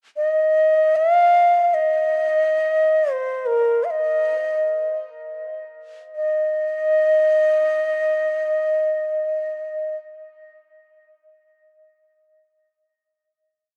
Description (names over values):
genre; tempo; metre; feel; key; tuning
indian classical, Hindustani; free time; none; none; unclear; A4 = 440 Hz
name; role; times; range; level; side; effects
breathy reedy bansuri; solo; 0.2-10.0 s; Bb4 to F5; -20 LUFS; equal; cassette tape, tape echo
room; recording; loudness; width
wet studio reverb, RT60 0.6 s; home recording on cassette; -20 LUFS; mono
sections
0.0-6.2 free-time section; 6.2-9.4 final note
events
none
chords
none